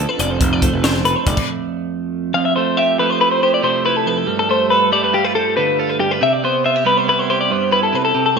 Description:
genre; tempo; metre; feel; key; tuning
math rock and midwest emo; 279 BPM (eighths); 9/8; straight; F lydian; A4 = 442 Hz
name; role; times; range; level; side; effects
twelve-string electric guitar; accompaniment; 0.0-8.4 s; F2 to C5; -20 LUFS; right 9 dB; lush chorus
clean electric guitar; arpeggios; 0.0-8.4 s; G4 to F5; -16 LUFS; left 3 dB; analog chorus
overdriven picked electric bass; bass; 0.0-1.4 s; F1; -21 LUFS; equal; none
crisp fusion drum kit; drums; 0.2-1.5 s; crash cymbal, hi-hat, kick drum, snare drum; -19 LUFS; left 1 dB; none
room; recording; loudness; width
wet plate reverb, RT60 1.2 s, small room ambience; bright 1980s-style digital production; -14 LUFS; side -5 dB against mid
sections
0.0-2.3 A section; 2.3-8.4 B section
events
stop 1.4-2.3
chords
0.4 F6; 2.3 Fmaj9; 4.3 G9; 6.2 Cmaj7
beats
0.19 | 0.41 0.62 0.84 1.05 1.27 1.48 1.70 1.92 2.13 | 2.35 2.56 2.77 2.99 3.21 3.42 3.63 3.85 4.07 | 4.28 4.49 4.71 4.92 5.14 5.35 5.57 5.78 6.00 | 6.21 6.43 6.64 6.86 7.07 7.29 7.50 7.71 7.93 | 8.14 8.36

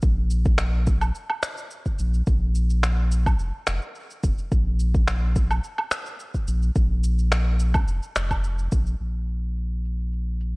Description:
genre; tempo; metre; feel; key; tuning
organic downtempo; 107 BPM; 4/4; straight; unclear; A4 = 441 Hz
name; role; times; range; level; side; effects
warm sub bass; bass; 0.0-10.6 s; F1 to Bb1; -22 LUFS; equal; sidechain pumping
electronic kick drum; drums; 0.0-8.8 s; none; -23 LUFS; equal; studio reverb
electronic shaker, finger snaps and woodblock; drums; 0.0-10.5 s; none; -28 LUFS; equal; low-pass filter on perc, studio reverb, low-pass filter on snare
room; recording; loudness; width
digital ambience; worn, warbling old tape, cassette tape, warbly pitch drift; -21 LUFS; side -28 dB against mid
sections
0.0-9.0 A section; 9.0-10.6 B section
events
filter sweep on drum 9.0-10.6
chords
none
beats
| 0.03 0.59 1.15 1.71 | 2.27 2.83 3.40 3.96 | 4.52 5.08 5.64 6.20 | 6.76 7.32 7.88 8.44 | 9.00 9.56 10.12

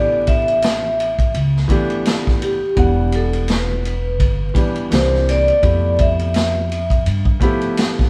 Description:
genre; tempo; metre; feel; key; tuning
hip hop, jazz-hop; 84 BPM; 4/4; swing 59% on 16ths; unclear; A4 = 440 Hz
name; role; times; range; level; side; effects
vibraphone with medium mallets; melody; 0.0-7.0 s; G4 to E5; -22 LUFS; equal; none
dark grand piano; accompaniment; 0.0-8.1 s; E3 to F#5; -25 LUFS; equal; none
upright bass; bass; 0.0-7.3 s; E1 to G2; -22 LUFS; equal; none
vintage drum kit; drums; 0.3-8.1 s; hi-hat, kick drum, ride cymbal, snare drum; -22 LUFS; equal; none
room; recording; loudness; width
moderate stone room reverb, RT60 1.2 s; band playing live in one room, vinyl crackle; -17 LUFS; mono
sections
0.0-8.1 A section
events
none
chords
0.0 A9sus4; 2.8 Em9; 4.9 C9; 5.6 Fmaj9#11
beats
0.63 1.34 2.06 | 2.77 3.49 4.20 4.92 | 5.63 6.34 7.06 7.77

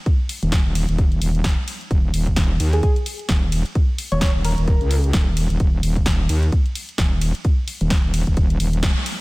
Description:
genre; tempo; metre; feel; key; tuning
bass house; 130 BPM; 4/4; swing 58% on 16ths; unclear; A4 = 441 Hz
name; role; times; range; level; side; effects
electronic kick drum; drums; 0.1-8.9 s; none; -18 LUFS; equal; small room reverb
house drum kit; drums; 0.1-9.2 s; hi-hat, ride cymbal, snare drum; -27 LUFS; equal; small room reverb
metallic wobble bass; bass; 0.4-8.9 s; Eb1 to Eb2; -19 LUFS; equal; distortion, chorus, tube saturation, sidechain pumping
soft struck synth lead; melody; 2.7-5.1 s; Ab4 to Db5; -27 LUFS; right 1 dB; chorus, tape echo
room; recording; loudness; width
little or no reverb; none; -17 LUFS; side -22 dB against mid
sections
0.0-9.2 A section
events
band accent 8.8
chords
none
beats
| 0.06 0.52 0.98 1.45 | 1.91 2.37 2.83 3.29 | 3.75 4.22 4.68 5.14 | 5.60 6.06 6.52 6.99 | 7.45 7.91 8.37 8.83

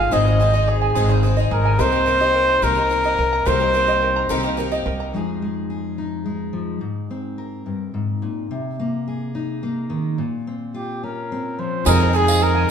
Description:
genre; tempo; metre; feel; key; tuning
indie folk with a building arrangement; 72 BPM (dotted quarters); 6/8; straight; F minor; A4 = 440 Hz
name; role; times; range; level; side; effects
mellow trumpet; melody; 0.0-4.6, 10.8-12.7 s; G4 to F5; -19 LUFS; equal; none
clear upright piano; accompaniment; 0.0-5.2, 11.9-12.7 s; F1 to Eb5; -27 LUFS; left 1 dB; none
picked twelve-string acoustic guitar; accompaniment; 0.0-5.2, 11.9-12.7 s; F2 to Ab4; -27 LUFS; left 3 dB; none
open-back banjo; arpeggios; 0.0-5.1, 11.9-12.7 s; Ab4 to Bb5; -25 LUFS; right 4 dB; none
upright bass; bass; 0.0-5.1, 11.9-12.7 s; Ab1 to F2; -20 LUFS; equal; none
fingerpicked steel-string acoustic guitar; accompaniment; 5.1-12.7 s; F2 to Bb4; -25 LUFS; left 2 dB; none
mellow brass ensemble; sustained chords; 11.8-12.7 s; F3 to Eb4; -26 LUFS; right 3 dB; none
tambourine; percussion; 11.9-12.4 s; none; -27 LUFS; right 5 dB; none
room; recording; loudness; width
wet large studio reverb, RT60 1.2 s; band playing live in one room; -18 LUFS; side -7 dB against mid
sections
0.0-5.1 A section; 5.1-11.9 B section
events
none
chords
0.1 Ab; 1.8 Cm7; 5.1 Fm7; 6.8 Ab; 8.5 Cm7; 10.2 Bbmadd9; 11.9 Fm7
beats
| 0.12 0.95 | 1.79 2.62 | 3.46 4.30 | 5.14 5.98 | 6.82 7.66 | 8.50 9.35 | 10.19 11.03 | 11.86 12.70

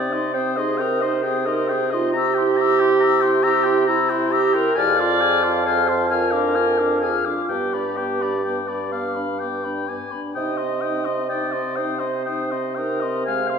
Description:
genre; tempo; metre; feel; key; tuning
classical, slow romantic movement for wind quintet; 39-47 BPM (dotted quarters); 6/8; rubato; C minor; A4 = 438 Hz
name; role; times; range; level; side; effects
hollow concert flute; melody; 0.0-13.6 s; B5 to F6; -25 LUFS; left 9 dB; none
warm oboe; second line; 0.0-13.6 s; D5 to Bb5; -27 LUFS; left 4 dB; none
mellow French horn; accompaniment; 0.0-13.6 s; Ab3 to Ab4; -29 LUFS; equal; none
mellow clarinet; accompaniment; 0.0-13.6 s; E4 to F5; -22 LUFS; right 4 dB; none
mellow bassoon; bass; 0.0-13.6 s; F2 to C3; -25 LUFS; right 2 dB; none
room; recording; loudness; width
wet recital hall reverb, RT60 1.7 s; recorded in a church or concert hall; -18 LUFS; side -6 dB against mid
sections
0.0-13.6 A section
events
none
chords
0.0 Cm; 2.1 C7; 4.8 Fm; 6.1 Ddim/F; 7.5 G; 10.4 Cm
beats
0.79 | 2.14 3.43 | 4.76 6.09 | 7.49 8.92 | 10.36 11.77 | 13.27

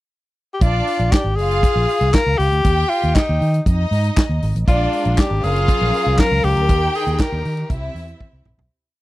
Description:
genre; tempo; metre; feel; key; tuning
disco; 119 BPM; 4/4; straight; unclear; A4 = 440 Hz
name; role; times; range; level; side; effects
breathy tenor saxophone; melody; 0.5-7.7 s; Eb4 to Bb4; -20 LUFS; left 2 dB; none
warm studio violin section; second line; 0.6-8.4 s; D4 to G5; -25 LUFS; right 2 dB; none
fingered electric bass; bass; 0.6-8.7 s; Gb1 to Eb3; -19 LUFS; equal; none
warm soul drum kit; drums; 0.6-8.7 s; handclaps, hi-hat, kick drum, snare drum, toms; -16 LUFS; equal; none
clear studio string section; sustained chords; 4.7-8.7 s; C3 to Bb4; -28 LUFS; right 1 dB; none
room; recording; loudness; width
little or no reverb; dry, close 1970s-style studio recording; -15 LUFS; side -17 dB against mid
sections
0.0-0.6 pickup bar; 0.6-8.7 pre-chorus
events
fade-out 6.7-8.7; drum fill 8.2-8.7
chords
0.0 N.C.; 0.6 Bb7; 1.4 Gbmaj7; 2.6 Eb; 3.7 Fm7; 4.7 Bb7; 5.4 Gbmaj7; 6.7 Eb; 7.7 C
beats
0.12 | 0.62 1.13 1.64 2.14 | 2.65 3.16 3.66 4.17 | 4.67 5.18 5.68 6.19 | 6.69 7.20 7.70 8.20

